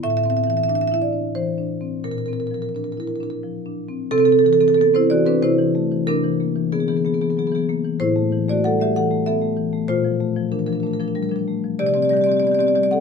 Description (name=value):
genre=classical, contemporary piece for solo marimba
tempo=86-97 BPM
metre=3/4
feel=rubato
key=unclear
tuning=A4 = 441 Hz
part: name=marimba with medium mallets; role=solo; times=0.0-13.0 s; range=A2 to F#5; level=-18 LUFS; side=equal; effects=none
room=light reverb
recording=minimal, uncompressed stereo recording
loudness=-17 LUFS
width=side -5 dB against mid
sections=0.0-4.1 A section; 4.1-13.0 B section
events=none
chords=0.0 Amadd11; 2.0 Bbadd9; 4.1 C69; 5.4 Am/C; 6.1 E7#11/C; 8.0 A5; 9.9 Bbmaj7; 11.8 Csus2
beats=| 0.03 0.69 1.35 | 2.04 2.73 3.43 | 4.11 4.77 5.43 | 6.08 6.73 7.37 | 8.00 8.64 9.26 | 9.89 10.52 11.16 | 11.80 12.43